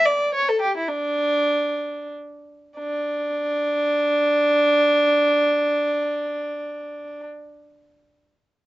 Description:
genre	classical, baroque-style suite movement for unaccompanied violin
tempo	free time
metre	none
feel	none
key	unclear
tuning	A4 = 440 Hz
part	warm violin	solo	0.0-7.2 s	D4 to D5	-19 LUFS	equal	none
room	light reverb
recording	nothing above 7.9 kHz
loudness	-19 LUFS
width	side -16 dB against mid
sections	0.0-2.8 A section; 2.8-6.7 B section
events	slowing down 0.0-2.8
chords	none

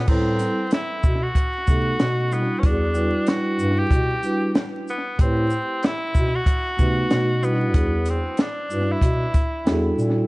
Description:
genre	hip hop, jazz-hop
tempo	94 BPM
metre	4/4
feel	swing 59% on 16ths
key	A dorian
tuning	A4 = 439 Hz
part	bright tenor saxophone	melody	0.0-10.0 s	B3 to G4	-26 LUFS	equal	tape echo
part	breathy bass clarinet	bass	0.0-10.2 s	E2 to C3	-23 LUFS	equal	none
part	vibraphone with soft mallets	accompaniment	0.1-10.3 s	G3 to B4	-25 LUFS	right 1 dB	tape echo
part	compact cocktail drum kit	drums	0.1-10.2 s	crash cymbal, hi-hat, kick drum, shaker, snare drum	-22 LUFS	equal	none
room	light reverb, small room ambience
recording	echo-heavy mix, vinyl crackle, nothing above 10.9 kHz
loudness	-19 LUFS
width	side -22 dB against mid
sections	0.1-10.3 A section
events	none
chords	0.1 Am9; 2.0 B5; 2.6 Em7; 5.2 Am9; 7.1 B7; 7.7 Em7

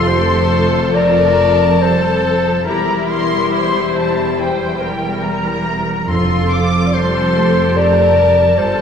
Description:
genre	classical, slow romantic movement for symphony orchestra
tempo	70 BPM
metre	4/4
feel	rubato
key	F major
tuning	A4 = 441 Hz
part	muted studio violin section	melody	0.0-8.8 s	G5 to D6	-21 LUFS	left 1 dB	none
part	dark clarinet	second line	0.0-8.8 s	G4 to D5	-16 LUFS	left 4 dB	none
part	muted studio violin section	second line	0.0-8.8 s	E4 to Bb4	-22 LUFS	left 1 dB	none
part	muted studio viola section	accompaniment	0.0-8.8 s	F3 to C5	-22 LUFS	right 2 dB	none
part	muted studio cello section	bass	0.0-8.8 s	E2 to G2	-19 LUFS	right 2 dB	none
part	muted studio double bass section	bass	0.0-8.8 s	E1 to G1	-22 LUFS	right 3 dB	none
part	timpani	percussion	0.0-0.5, 6.1-7.3 s	F2	-30 LUFS	equal	none
room	wet recital hall reverb, RT60 1.4 s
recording	heard from further back in the room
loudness	-12 LUFS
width	side -7 dB against mid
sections	0.0-8.8 A section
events	none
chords	0.0 F; 2.7 C7/E; 6.1 F

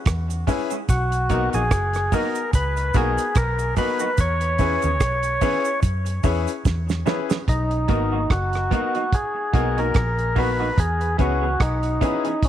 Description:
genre	roots reggae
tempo	73 BPM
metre	4/4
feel	swing 57% on 16ths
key	B major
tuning	A4 = 440 Hz
part	vintage muted fingered electric bass	bass	0.1-12.0 s	F#1 to F#2	-24 LUFS	equal	none
part	damped 70s drum kit	drums	0.1-12.5 s	hi-hat, kick drum, rim click, snare drum	-22 LUFS	right 1 dB	none
part	cabasa	percussion	0.1-7.5 s	none	-40 LUFS	right 14 dB	none
part	semi-hollow electric guitar	accompaniment	0.5-12.3 s	E3 to G#4	-30 LUFS	right 10 dB	lush chorus, tape echo
part	clear concert grand piano	stabs	0.5-12.3 s	B3 to B4	-28 LUFS	left 10 dB	none
part	percussive tonewheel organ	melody	0.9-12.5 s	C#4 to C#5	-24 LUFS	equal	overdrive, tape echo
room	light reverb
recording	1960s-style stereo with parts hard left and right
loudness	-19 LUFS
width	side -11 dB against mid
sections	0.0-7.5 A section; 7.5-12.5 B section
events	drum fill 6.7-7.5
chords	0.0 E6; 0.9 Bmaj7; 4.2 E6; 7.5 Bmaj7; 10.8 E6

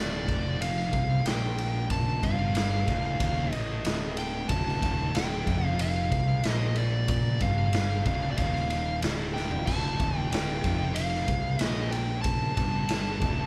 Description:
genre	stoner and doom metal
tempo	93 BPM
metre	4/4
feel	straight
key	D phrygian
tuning	A4 = 440 Hz
part	fuzz lead guitar	melody	0.0-13.5 s	D5 to A5	-35 LUFS	equal	distortion
part	thick fuzz guitar	riff	0.0-13.5 s	D2 to C3	-37 LUFS	equal	distortion
part	thick fuzz guitar	riff	0.0-13.5 s	D2 to C3	-36 LUFS	equal	none
part	fuzz fingered electric bass	bass	0.0-13.5 s	D1 to C2	-36 LUFS	equal	overdrive
part	raw garage drum kit	drums	0.3-13.4 s	crash cymbal, kick drum, ride cymbal, snare drum, toms	-32 LUFS	equal	none
room	light reverb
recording	band playing live in one room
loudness	-28 LUFS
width	mono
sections	0.0-13.5 A section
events	drum fill 9.3-9.7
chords	0.0 Dm

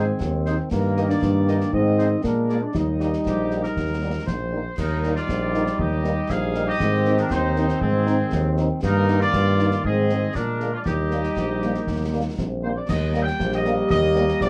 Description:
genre	military-style march for wind band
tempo	118 BPM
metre	2/4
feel	straight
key	Eb major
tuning	A4 = 440 Hz
part	mellow trumpet section	melody	0.0-14.5 s	Ab4 to G5	-32 LUFS	equal	none
part	dark euphonium	second line	0.0-4.2, 11.4-14.5 s	G3 to G4	-27 LUFS	equal	none
part	warm woodwind section	second line	0.0-14.5 s	C4 to G5	-34 LUFS	equal	none
part	mellow French horn section	accompaniment	0.0-14.2 s	D3 to Eb4	-30 LUFS	equal	none
part	clear trombone section	sustained chords	0.0-14.5 s	Eb3 to Eb4	-30 LUFS	equal	none
part	clear tuba	bass	0.0-14.5 s	Bb1 to Bb2	-26 LUFS	equal	none
part	concert snare drum, concert bass drum and clash cymbals	drums	0.2-14.5 s	none	-33 LUFS	equal	none
room	moderate booth ambience, RT60 0.2 s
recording	dark, warm production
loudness	-22 LUFS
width	mono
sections	0.0-4.8 A section; 4.8-12.9 A section; 12.9-14.5 B section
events	none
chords	0.0 Ab; 0.7 Eb/G; 1.7 Ab; 2.2 Bb7; 2.7 Eb; 6.8 Ab; 8.8 Eb/G; 9.8 Ab; 10.4 Bb7; 10.9 Eb

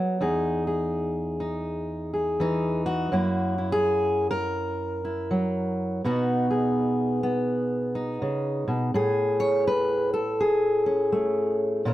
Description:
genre	folk, solo fingerstyle acoustic guitar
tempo	82 BPM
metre	4/4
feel	swing 62% on 8ths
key	unclear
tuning	A4 = 439 Hz
part	fingerpicked steel-string acoustic guitar	solo	0.0-11.9 s	E2 to C#5	-23 LUFS	equal	none
room	moderate studio reverb, RT60 0.7 s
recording	dark, warm production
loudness	-23 LUFS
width	side -15 dB against mid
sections	0.0-11.9 A section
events	none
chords	0.2 Emaj7; 3.1 F#7; 6.0 B; 8.9 Amaj7

